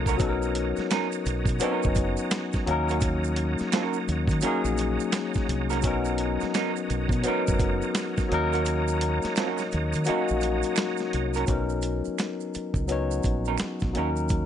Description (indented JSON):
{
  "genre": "R&B, neo-soul",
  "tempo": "85 BPM",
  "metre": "4/4",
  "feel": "swing 62% on 16ths",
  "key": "unclear",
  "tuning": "A4 = 436 Hz",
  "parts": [
    { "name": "barky tine electric piano", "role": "accompaniment", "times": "0.0-14.5 s", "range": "Gb3 to C#5", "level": "-27 LUFS", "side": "left 4 dB", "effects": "overdrive, phaser" },
    { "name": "bright tonewheel organ", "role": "sustained chords", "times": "0.0-11.5 s", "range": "C#5 to Eb6", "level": "-36 LUFS", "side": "right 4 dB", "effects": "slow rotary speaker, chorus vibrato" },
    { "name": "deep dub fingered electric bass", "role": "bass", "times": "0.0-14.5 s", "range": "F#1 to Eb3", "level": "-29 LUFS", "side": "right 1 dB", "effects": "none" },
    { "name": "electric guitar through a small old amp", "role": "second line", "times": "0.1-14.1 s", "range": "Db4 to Bb4", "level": "-32 LUFS", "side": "right 15 dB", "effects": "none" },
    { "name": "dusty soul sampler-style drum kit", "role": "drums", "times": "0.1-14.5 s", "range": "finger snaps, hi-hat, kick drum, snare drum", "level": "-28 LUFS", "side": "right 1 dB", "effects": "none" },
    { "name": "maracas and finger snaps", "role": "percussion", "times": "0.1-14.5 s", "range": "none", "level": "-39 LUFS", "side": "right 19 dB", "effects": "none" }
  ],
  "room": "digital ambience",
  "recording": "nothing above 10.6 kHz",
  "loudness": "-24 LUFS",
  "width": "side -9 dB against mid",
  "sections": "0.0-11.5 A section; 11.5-14.5 B section",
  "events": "kick muted 8.7-11.5",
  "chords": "0.2 Bmaj9; 2.7 Ebm7; 5.8 Bmaj9; 8.3 Ebm7; 11.5 Bmaj9; 14.0 Ebm7"
}